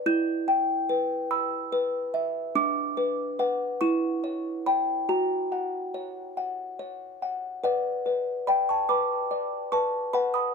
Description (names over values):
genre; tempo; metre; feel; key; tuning
classical, lullaby for music box; 48 BPM (dotted quarters); 6/8; straight; B minor; A4 = 440 Hz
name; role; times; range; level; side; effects
music box; solo; 0.0-10.5 s; D4 to G6; -25 LUFS; equal; tape echo
room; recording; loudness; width
light reverb; close, detailed microphones; -25 LUFS; side -5 dB against mid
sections
0.0-7.6 A section; 7.6-10.5 B section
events
none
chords
0.1 Em; 2.6 Bm/D; 3.8 C#dim/E; 5.1 F#; 7.6 Bm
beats
| 0.06 1.30 | 2.55 3.81 | 5.08 6.36 | 7.62 8.88 | 10.12